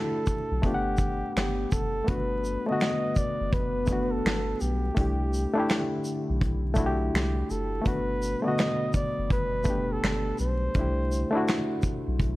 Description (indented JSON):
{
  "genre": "lo-fi hip hop",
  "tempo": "83 BPM",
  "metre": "4/4",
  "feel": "swing 65% on 16ths",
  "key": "G major",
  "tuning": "A4 = 439 Hz",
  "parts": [
    { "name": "breathy flugelhorn", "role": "melody", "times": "0.0-11.8 s", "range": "G4 to Eb5", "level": "-32 LUFS", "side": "right 1 dB", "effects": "tape echo" },
    { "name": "barky reed electric piano", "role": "accompaniment", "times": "0.0-12.4 s", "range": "D3 to F#5", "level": "-30 LUFS", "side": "left 1 dB", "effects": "overdrive, cassette tape" },
    { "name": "warbly tape-like pad", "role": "sustained chords", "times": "0.0-12.4 s", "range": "B2 to B4", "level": "-38 LUFS", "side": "left 1 dB", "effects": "chorus, built-in reverb" },
    { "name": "vintage brush drum kit", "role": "drums", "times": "0.3-12.4 s", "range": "finger snaps, hi-hat, kick drum, shaker, snare drum", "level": "-29 LUFS", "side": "equal", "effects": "none" },
    { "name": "soft dub sub bass", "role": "bass", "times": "0.5-12.4 s", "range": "F#1 to C2", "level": "-30 LUFS", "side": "equal", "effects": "none" }
  ],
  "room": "little or no reverb",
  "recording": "vinyl crackle",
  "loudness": "-25 LUFS",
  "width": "side -18 dB against mid",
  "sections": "0.0-2.1 A section; 2.1-12.4 B section",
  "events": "none",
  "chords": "0.0 C69 (rootless); 0.6 Gmaj7; 5.0 C69; 7.9 Gmaj7; 10.8 C69"
}